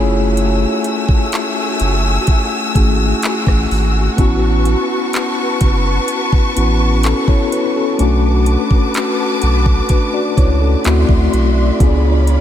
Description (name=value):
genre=contemporary R&B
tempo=63 BPM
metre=4/4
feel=straight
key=A major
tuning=A4 = 440 Hz
part: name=mellow tine electric piano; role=accompaniment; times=0.0-12.4 s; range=A3 to D5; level=-18 LUFS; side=left 3 dB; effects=fast stereo tremolo
part: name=warm studio string section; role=sustained chords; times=0.0-12.4 s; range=A3 to E6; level=-20 LUFS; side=left 1 dB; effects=none
part: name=warm sub bass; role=bass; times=0.0-12.4 s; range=F#1 to D2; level=-15 LUFS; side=equal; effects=none
part: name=smooth R&B drum kit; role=drums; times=0.4-12.4 s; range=handclaps, hi-hat, kick drum, rim click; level=-17 LUFS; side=equal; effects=none
room=light reverb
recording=none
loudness=-12 LUFS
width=side -10 dB against mid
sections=0.0-12.4 A section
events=none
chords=0.0 F#m9; 4.2 A69; 8.0 Bm11; 10.8 D9; 11.8 C#7b9